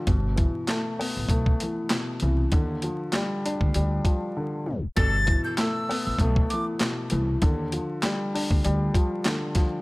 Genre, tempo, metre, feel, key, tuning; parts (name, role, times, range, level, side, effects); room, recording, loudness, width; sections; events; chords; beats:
hip hop, boom-bap hip-hop; 98 BPM; 4/4; swing 55% on 16ths; G major; A4 = 445 Hz
dark grand piano; accompaniment; 0.0-9.8 s; B2 to D4; -28 LUFS; left 1 dB
upright bass; bass; 0.1-8.9 s; G1 to Eb2; -26 LUFS; equal
boom bap sampler-style drum kit; drums; 0.1-9.7 s; handclaps, hi-hat, kick drum, snare drum; -25 LUFS; equal
breathy bright concert flute; melody; 5.0-6.7 s; D6 to A6; -28 LUFS; left 1 dB
clear saxophone section; stabs; 5.0-5.2 s; E3 to A4; -37 LUFS; right 4 dB; digital delay
studio ambience; vinyl crackle, tape stop; -23 LUFS; side -23 dB against mid
0.0-5.0 A section; 5.0-9.8 B section
break 4.4-5.0; tape stop 4.7-5.0
0.1 G69; 2.5 Ebmaj9; 5.0 G69; 7.4 Ebmaj9
| 0.07 0.69 1.30 1.91 | 2.52 3.13 3.75 4.36 | 4.97 5.58 6.20 6.81 | 7.42 8.03 8.64 9.26